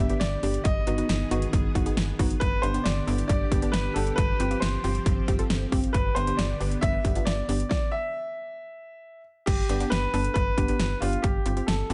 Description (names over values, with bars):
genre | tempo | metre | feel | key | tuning
synth-pop | 136 BPM | 4/4 | straight | G mixolydian | A4 = 440 Hz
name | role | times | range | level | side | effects
warm concert grand piano | melody | 0.0-11.9 s | F4 to E5 | -33 LUFS | equal | digital delay
warbly dusty pluck | accompaniment | 0.0-11.9 s | B3 to A4 | -34 LUFS | equal | chorus
string machine, full ensemble | sustained chords | 0.0-7.7 s | D3 to G#4 | -38 LUFS | equal | ensemble chorus
slap-like FM bass | bass | 0.0-11.9 s | G1 | -31 LUFS | equal | none
pop drum kit | drums | 0.1-11.9 s | crash cymbal, hi-hat, kick drum, snare drum | -29 LUFS | equal | overdrive
room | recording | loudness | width
light reverb | nothing above 10.8 kHz | -26 LUFS | mono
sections
0.0-9.5 A section; 9.5-11.9 A section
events
stop 7.7-9.5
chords
0.0 G; 0.7 B6/G; 2.4 G; 4.2 Fsus2/G; 5.9 G; 7.7 N.C.; 9.5 G; 11.2 Fsus2/G